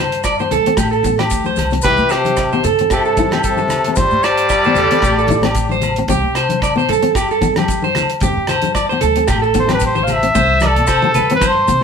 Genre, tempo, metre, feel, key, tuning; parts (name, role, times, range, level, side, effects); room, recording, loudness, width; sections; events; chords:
highlife guitar band; 113 BPM; 4/4; swing 54% on 16ths; C major; A4 = 440 Hz
electric guitar at the edge of break-up; arpeggios; 0.0-11.6 s; G4 to D5; -17 LUFS; right 4 dB
upright bass; bass; 0.0-11.8 s; G1 to C3; -22 LUFS; equal
damped 70s drum kit; drums; 0.1-11.8 s; hi-hat, kick drum, rim click; -23 LUFS; equal
maracas; percussion; 0.1-11.8 s; -31 LUFS; left 5 dB
agogo bells; percussion; 0.2-11.6 s; -24 LUFS; left 4 dB
fingerpicked steel-string acoustic guitar; accompaniment; 0.4-11.8 s; B3 to E4; -21 LUFS; left 4 dB
congas; percussion; 0.5-11.5 s; -24 LUFS; left 4 dB
warm trumpet; melody; 1.8-5.8, 9.6-11.8 s; G4 to F5; -16 LUFS; equal
raspy tenor saxophone; second line; 1.9-5.8 s; C3 to G3; -21 LUFS; left 3 dB
moderate studio reverb, RT60 0.8 s; band playing live in one room; -12 LUFS; side -6 dB against mid
0.0-10.4 A section; 10.4-11.8 B section
0.0 Gsus4; 0.8 Am; 1.8 C5; 4.0 Gsus4; 5.0 Am; 6.1 C5; 8.2 Gsus4; 9.3 Am; 10.4 C5